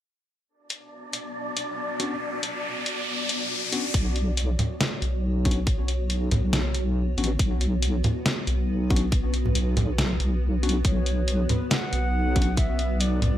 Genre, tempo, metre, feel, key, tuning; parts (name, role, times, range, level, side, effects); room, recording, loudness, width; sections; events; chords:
deep dubstep; 139 BPM; 4/4; swing 55% on 16ths, half-time; B minor; A4 = 440 Hz
granular cloud pad; sustained chords; 1.0-13.4 s; B3 to D5; -34 LUFS; left 1 dB; built-in reverb
riser; sound effects; 1.6-3.9 s; -31 LUFS; left 1 dB
wind-like tuned noise texture; texture; 0.9-4.0 s; D4 to D5; -35 LUFS; equal; built-in reverb
trip hop sampler-style drum kit; drums; 0.7-13.3 s; hi-hat, snare drum; -28 LUFS; left 1 dB
tine electric piano; stabs; 2.0-12.5 s; B3 to F#4; -33 LUFS; left 3 dB; low-pass filter, dub echo
deep soft wobble bass; bass; 3.9-13.4 s; A1 to B1; -24 LUFS; equal; chorus
electronic kick drum; drums; 3.9-12.7 s; -24 LUFS; equal
congas; percussion; 4.6-13.3 s; -26 LUFS; right 1 dB
bright reedy ney; melody; 10.8-13.4 s; B4 to F#5; -32 LUFS; right 1 dB; dub echo
light reverb, digital ambience; lossy compression artefacts; -23 LUFS; side -12 dB against mid
0.5-3.9 A section; 3.9-13.4 B section
riser 1.6-3.9
0.5 Bm; 3.9 Bsus2